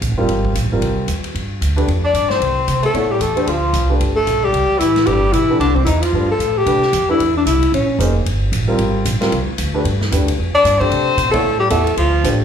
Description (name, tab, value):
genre	jazz, small-group swing and bop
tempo	226 BPM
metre	4/4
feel	swing 60% on 8ths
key	C major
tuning	A4 = 437 Hz
part	upright bass	bass	0.0-12.4 s	Eb1 to C3	-19 LUFS	right 1 dB	none
part	swinging big-band drum kit	drums	0.0-12.3 s	hi-hat, kick drum, ride cymbal, snare drum	-26 LUFS	left 1 dB	none
part	warm baby grand piano	accompaniment	0.2-12.4 s	G3 to E5	-21 LUFS	right 1 dB	slapback echo
part	bright tenor saxophone	second line	2.0-6.6, 10.5-12.4 s	C3 to D4	-23 LUFS	right 4 dB	slapback echo
part	breathy alto saxophone	melody	2.1-8.1, 10.5-12.4 s	C4 to D5	-16 LUFS	left 3 dB	slapback echo
room	light reverb, small room ambience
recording	live gig heard through the venue's PA, club reverb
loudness	-14 LUFS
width	side -8 dB against mid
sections	0.0-6.7 A section; 6.7-12.4 A section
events	band accent 11.3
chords	0.3 Abmaj7; 1.3 G7(no3); 2.4 Am/C; 2.9 A7; 3.5 Dm7; 4.0 G; 4.5 Cmaj7; 6.1 G9; 6.7 Cmaj7; 7.7 Bbm7; 8.3 Gm11; 8.8 Abmaj7; 9.8 G7; 10.9 Cmaj9; 11.4 A5